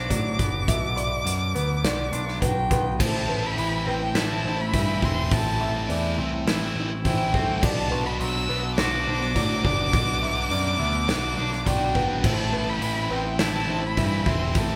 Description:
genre	post-rock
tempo	104 BPM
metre	4/4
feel	straight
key	A dorian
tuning	A4 = 440 Hz
part	warm violin	melody	0.0-14.8 s	G5 to E6	-31 LUFS	equal	none
part	felt-muted upright piano	arpeggios	0.0-14.8 s	A4 to E5	-36 LUFS	equal	none
part	twangy electric guitar	arpeggios	0.0-14.8 s	A2 to F#4	-34 LUFS	equal	none
part	growling picked electric bass	bass	0.0-14.8 s	E1 to A2	-31 LUFS	equal	overdrive
part	big rock drum kit	drums	0.1-14.7 s	crash cymbal, hi-hat, kick drum, snare drum	-29 LUFS	equal	none
part	distorted electric guitar	riff	3.0-14.8 s	A2 to F#4	-32 LUFS	equal	overdrive
room	wet large studio reverb, RT60 1.5 s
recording	band playing live in one room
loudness	-24 LUFS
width	mono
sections	0.0-3.0 A section; 3.0-14.8 B section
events	none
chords	0.0 Bm; 3.0 Amadd9; 7.6 Bm; 12.2 Amadd9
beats	0.10 | 0.68 1.26 1.84 2.42 | 3.00 3.58 4.16 4.73 | 5.31 5.89 6.47 7.05 | 7.62 8.20 8.78 9.36 | 9.94 10.51 11.09 11.67 | 12.24 12.82 13.40 13.97 | 14.55

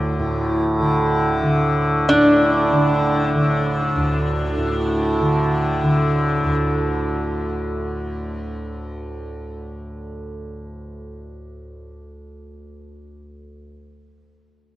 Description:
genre	world meditative, free-time meditation music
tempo	free time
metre	none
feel	none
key	unclear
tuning	A4 = 438 Hz
part	tanpura	drone	0.0-13.6 s	D2 to D3	-20 LUFS	equal	none
part	metal-body resonator slide guitar	melody	2.1-6.6 s	D4	-20 LUFS	equal	diffuse ambient delay
room	wet huge ambient reverb, RT60 4.0 s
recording	worn, warbling old tape, cassette tape, warbly pitch drift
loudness	-17 LUFS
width	side -16 dB against mid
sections	0.0-2.1 A section; 2.1-6.7 B section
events	none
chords	none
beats	free time

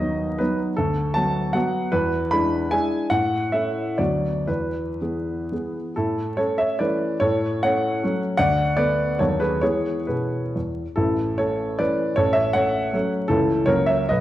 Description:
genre	classical, romantic triple-time dance for piano with dotted rhythms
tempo	113-172 BPM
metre	3/4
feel	rubato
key	A major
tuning	A4 = 440 Hz
part	warm baby grand piano	solo	0.0-14.2 s	A1 to B5	-20 LUFS	equal	none
room	moderate recital hall reverb, RT60 1.4 s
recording	vinyl crackle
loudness	-20 LUFS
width	side -14 dB against mid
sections	0.0-6.0 A section; 6.0-14.2 B section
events	none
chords	0.0 B/D#; 0.8 Bm7/D; 1.9 E7; 3.1 A; 4.0 Bm/D; 4.5 E; 6.0 A; 7.2 F#m/A; 8.4 Bm7/D; 9.2 B7/D#; 9.6 E; 11.0 A; 12.2 F#m/A; 13.3 A/C#; 13.7 F#7/C#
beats	0.40 | 0.77 1.15 1.55 | 1.93 2.33 2.73 | 3.12 3.54 3.99 | 4.48 5.00 5.51 | 5.97 6.38 6.80 | 7.20 7.63 8.03 | 8.39 8.77 9.20 | 9.61 10.07 10.55 | 10.96 11.38 11.80 | 12.17 12.55 12.94 | 13.30 13.68 14.11

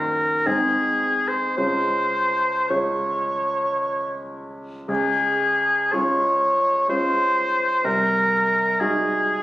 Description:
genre	classical, romantic duo for oboe and grand piano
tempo	52-66 BPM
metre	3/4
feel	rubato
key	Db major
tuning	A4 = 436 Hz
part	warm oboe	melody	0.0-9.4 s	Ab4 to Db5	-20 LUFS	equal	none
part	bright concert grand piano	accompaniment	0.0-9.4 s	C2 to Gb4	-26 LUFS	equal	none
room	moderate scoring stage reverb, RT60 1.6 s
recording	recorded on a phone in the room, club reverb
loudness	-19 LUFS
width	side -15 dB against mid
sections	0.0-4.9 A section; 4.9-9.4 B section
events	none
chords	0.5 Ab; 1.6 Db; 7.9 Ab7/C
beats	0.47 | 1.58 2.70 3.80 | 4.89 5.94 6.91 | 7.86 8.81

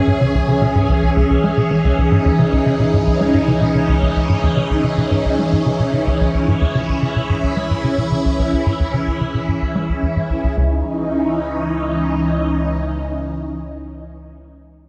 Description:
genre	ambient, sequencer-driven space music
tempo	110 BPM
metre	4/4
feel	straight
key	C# minor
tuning	A4 = 440 Hz
part	phased string machine	sustained chords	0.0-14.3 s	E3 to G#4	-21 LUFS	equal	ensemble chorus, phaser
part	analog drone	bass	0.1-12.2 s	C#2	-32 LUFS	equal	none
part	bubbling stepped-filter texture	texture	0.0-10.6 s	G#4	-28 LUFS	equal	chorus, built-in reverb
part	tight sequencer bass	riff	0.1-10.8 s	C#2 to G#3	-20 LUFS	equal	analog chorus, delay
room	wet echo chamber reverb, RT60 2.3 s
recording	echo-heavy mix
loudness	-17 LUFS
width	mono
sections	0.0-10.6 A section; 10.6-14.9 B section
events	filter sweep on analog synth bass 0.0-10.6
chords	0.0 C#madd9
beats	0.20 0.75 1.30 | 1.84 2.39 2.93 3.48 | 4.02 4.57 5.11 5.66 | 6.21 6.75 7.30 7.84 | 8.39 8.93 9.48 10.02 | 10.57 11.11 11.66 12.21 | 12.75 13.30 13.84

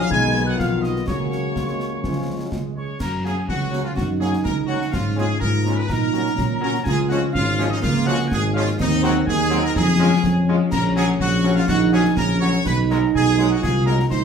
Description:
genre	military-style march for wind band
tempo	124 BPM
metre	2/4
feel	straight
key	F# major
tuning	A4 = 440 Hz
part	clear trumpet section	melody	0.0-14.2 s	D#4 to G#5	-26 LUFS	equal	none
part	dark euphonium	second line	0.0-14.2 s	C#3 to E#4	-24 LUFS	right 5 dB	none
part	wooden piccolo	second line	0.0-14.2 s	D#5 to G#6	-28 LUFS	left 2 dB	none
part	mellow French horn section	accompaniment	0.0-14.0 s	F#3 to F#4	-29 LUFS	left 4 dB	none
part	clear trombone section	sustained chords	0.0-13.9 s	D#3 to C#4	-30 LUFS	equal	none
part	dark tuba	bass	0.0-14.2 s	G#1 to A#2	-21 LUFS	equal	none
part	concert bass drum, concert snare drum and clash cymbals	drums	0.1-14.2 s	none	-29 LUFS	left 1 dB	none
room	wet large studio reverb, RT60 0.8 s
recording	heard from further back in the room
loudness	-17 LUFS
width	side -6 dB against mid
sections	0.0-3.0 A section; 3.0-14.2 B section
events	none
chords	0.1 G#m6/B; 1.1 F#/C#; 2.0 C#; 3.0 F#; 4.9 C#7/G#; 5.9 F#/A#; 6.9 C#; 8.8 G#7/D#; 9.8 C#/E#; 10.7 F#/A#; 12.7 G#m7/B; 13.6 G#7/B#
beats	| 0.10 0.58 | 1.07 1.55 | 2.03 2.52 | 3.00 3.48 | 3.96 4.45 | 4.93 5.41 | 5.89 6.38 | 6.86 7.34 | 7.82 8.30 | 8.79 9.27 | 9.75 10.24 | 10.72 11.20 | 11.69 12.17 | 12.65 13.13 | 13.62 14.10

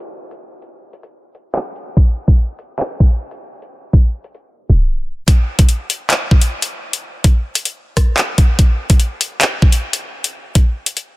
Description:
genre	hip hop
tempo	145 BPM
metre	4/4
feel	half-time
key	none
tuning	none
part	drill drum kit	drums	0.0-11.1 s	handclaps, hi-hat, kick drum, rim click	-13 LUFS	equal	none
room	little or no reverb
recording	dense, heavily limited modern master, low-pass filter, tape stop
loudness	-13 LUFS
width	side -20 dB against mid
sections	0.0-5.3 A section; 5.3-11.2 B section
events	tape stop 4.5-5.3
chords	none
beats	| 0.31 0.73 1.14 1.55 | 1.97 2.38 2.79 3.21 | 3.62 4.04 4.45 4.86 | 5.28 5.69 6.11 6.52 | 6.93 7.35 7.76 8.17 | 8.59 9.00 9.42 9.83 | 10.24 10.66

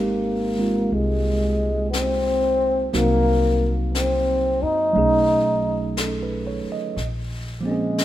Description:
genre	jazz ballad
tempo	60 BPM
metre	4/4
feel	swing 68% on 8ths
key	unclear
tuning	A4 = 440 Hz
part	breathy trombone	melody	0.0-8.0 s	Ab3 to Eb4	-21 LUFS	left 1 dB	none
part	tine electric piano	accompaniment	0.0-8.0 s	F3 to D#5	-25 LUFS	right 3 dB	overdrive
part	upright bass	bass	0.0-8.0 s	Ab1 to Gb2	-26 LUFS	left 1 dB	none
part	jazz brush drum kit	drums	0.9-8.0 s	brushed snare drum, hi-hat, snare drum	-32 LUFS	left 4 dB	none
room	light reverb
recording	minimal, uncompressed stereo recording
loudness	-19 LUFS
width	side -13 dB against mid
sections	0.0-8.0 A section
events	none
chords	0.0 Abmaj7; 2.9 Cm7b5; 5.0 B13; 7.0 Bbm9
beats	0.91 1.92 | 2.93 3.94 4.95 5.96 | 6.97 7.98

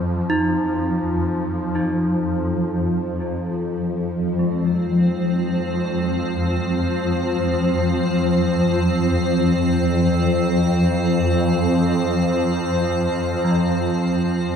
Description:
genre	dark ambient drone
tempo	free time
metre	none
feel	none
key	F minor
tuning	A4 = 440 Hz
part	swarming drone	drone	0.0-14.6 s	F2 to F3	-19 LUFS	left 1 dB	built-in reverb
part	gamelan-type bronze metallophone	arpeggios	0.3-14.6 s	F3 to Eb4	-26 LUFS	right 1 dB	analog delay
part	icy glass pad	texture	4.9-14.6 s	C4 to C5	-24 LUFS	right 1 dB	chorus, built-in reverb
room	wet plate reverb, RT60 2.6 s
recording	echo-heavy mix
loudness	-18 LUFS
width	side -7 dB against mid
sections	0.0-4.4 A section; 4.4-14.6 B section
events	fade-in on bronze metallophone 4.4-14.6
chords	0.0 Ebsus2/F; 4.4 Fm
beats	free time

